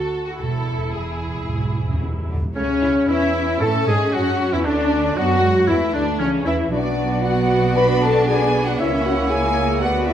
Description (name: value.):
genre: quick classical-period movement for symphony orchestra.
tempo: 115 BPM.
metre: 4/4.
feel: rubato.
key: A major.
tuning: A4 = 442 Hz.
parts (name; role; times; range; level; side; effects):
rich studio violin section; melody; 0.0-10.1 s; C#4 to D5; -31 LUFS; left 3 dB; none.
warm studio violin section; second line; 0.0-10.1 s; F#4 to B5; -29 LUFS; left 2 dB; none.
warm studio viola section; accompaniment; 0.0-10.1 s; A#3 to A4; -27 LUFS; right 2 dB; none.
warm studio cello section; bass; 0.4-10.1 s; E2 to E4; -26 LUFS; right 2 dB; none.
warm studio double bass section; bass; 0.4-10.1 s; E1 to A2; -24 LUFS; right 3 dB; none.
timpani; percussion; 0.4-2.5 s; E2; -27 LUFS; equal; none.
bright clarinet; second line; 2.6-10.1 s; C#4 to D5; -29 LUFS; left 1 dB; none.
mellow hollow silver concert flute; second line; 2.6-10.1 s; C#5 to B5; -28 LUFS; left 2 dB; none.
warm oboe; second line; 2.6-10.1 s; C#4 to F#5; -28 LUFS; right 2 dB; none.
mellow bassoon; accompaniment; 2.6-10.1 s; C#3 to B3; -27 LUFS; right 1 dB; none.
mellow French horn section; sustained chords; 2.6-10.1 s; C#4 to B4; -22 LUFS; left 3 dB; none.
room: wet recital hall reverb, RT60 1.4 s.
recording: none.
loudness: -17 LUFS.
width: side -10 dB against mid.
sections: 0.0-2.6 A section; 2.6-10.1 B section.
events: timpani fill 0.4-2.6.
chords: 0.4 E; 2.6 A/C#; 4.7 G#dim/D; 5.7 A; 6.7 Bm; 8.8 A#dim/C#.